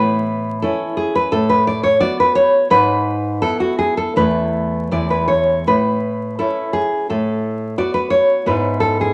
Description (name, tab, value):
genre	romantic piece for solo classical guitar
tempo	79-88 BPM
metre	2/4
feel	rubato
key	A major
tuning	A4 = 440 Hz
part	nylon-string guitar	solo	0.0-9.1 s	E2 to D5	-17 LUFS	equal	none
room	moderate large studio reverb, RT60 1.1 s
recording	vinyl crackle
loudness	-17 LUFS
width	mono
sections	0.0-9.1 A section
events	none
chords	0.0 A; 1.3 B5/A; 2.7 E/G#; 4.2 Esus4; 4.9 E; 5.7 A; 7.1 B5/A; 8.5 E/G#